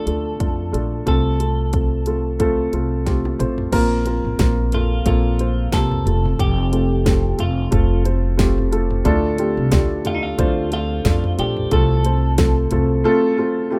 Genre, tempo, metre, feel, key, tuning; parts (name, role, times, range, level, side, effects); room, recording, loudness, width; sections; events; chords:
piano-driven pop; 90 BPM; 4/4; swing 56% on 16ths; Bb major; A4 = 440 Hz
twelve-string electric guitar; melody; 0.0-13.8 s; Eb4 to A4; -30 LUFS; equal
dark upright piano; accompaniment; 0.0-13.8 s; A2 to C5; -23 LUFS; equal
upright bass; bass; 0.0-13.0 s; F1 to F2; -22 LUFS; equal
pop drum kit; drums; 0.1-12.9 s; crash cymbal, hi-hat, kick drum, snare drum, toms; -24 LUFS; equal
light reverb; rough home demo mix; -19 LUFS; mono
0.0-3.7 A section; 3.7-13.8 B section
drum fill 3.1-3.7
0.0 Dm; 1.1 F/C; 3.7 Bbsus2; 6.1 F; 9.1 Dm; 11.7 F/C